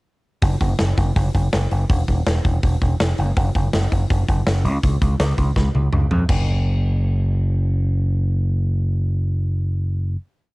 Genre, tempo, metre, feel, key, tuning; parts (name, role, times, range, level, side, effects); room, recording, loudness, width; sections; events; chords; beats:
punk rock; 164 BPM; 4/4; straight; A4 = 439 Hz
growling picked electric bass; bass; 0.4-10.2 s; E1 to E#2; -18 LUFS; equal; overdrive
big rock drum kit; drums; 0.4-6.4 s; crash cymbal, hi-hat, kick drum, snare drum, toms; -21 LUFS; equal; cassette tape
little or no reverb; home recording on cassette; -17 LUFS; side -23 dB against mid
0.4-6.3 verse; 6.3-9.2 final note
drum fill 5.6-6.3
| 0.43 0.80 1.16 1.53 | 1.90 2.27 2.63 3.00 | 3.37 3.74 4.10 4.47 | 4.83 5.20 5.56 5.93 | 6.29 6.66 7.02 7.38 | 7.75 8.11 8.47 8.84